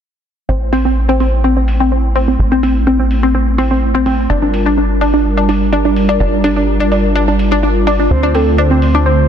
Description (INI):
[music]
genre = progressive house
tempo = 126 BPM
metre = 4/4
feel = straight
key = unclear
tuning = A4 = 441 Hz
[part]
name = warm analog pad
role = sustained chords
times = 0.5-9.3 s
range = D3 to Bb4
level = -18 LUFS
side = equal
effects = chorus
[part]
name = analog pluck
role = arpeggios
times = 0.5-9.1 s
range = C4 to D4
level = -14 LUFS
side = left 1 dB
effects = chorus, phaser, digital delay
[part]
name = tight sequencer bass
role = bass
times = 0.5-9.3 s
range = G1 to D2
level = -15 LUFS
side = equal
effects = none
[part]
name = electronic hi-hat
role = drums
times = 0.7-8.9 s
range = none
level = -35 LUFS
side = equal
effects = low-pass filter on hats, low-pass filter on room
[part]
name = soft octave-layered synth lead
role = melody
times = 8.1-9.3 s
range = A4 to C5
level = -16 LUFS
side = right 2 dB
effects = chorus, phaser
[sound]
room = moderate lush hall reverb, RT60 1.9 s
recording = dense, heavily limited modern master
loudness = -11 LUFS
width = side -8 dB against mid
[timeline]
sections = 0.5-9.3 A section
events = filter sweep on synth pluck 0.5-9.3; filter sweep on analog synth pad 0.5-9.3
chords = 0.5 Am; 4.3 Gm7; 8.1 Dm7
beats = | 0.49 0.96 1.44 1.92 | 2.39 2.87 3.35 3.82 | 4.30 4.77 5.25 5.73 | 6.20 6.68 7.16 7.63 | 8.11 8.58 9.06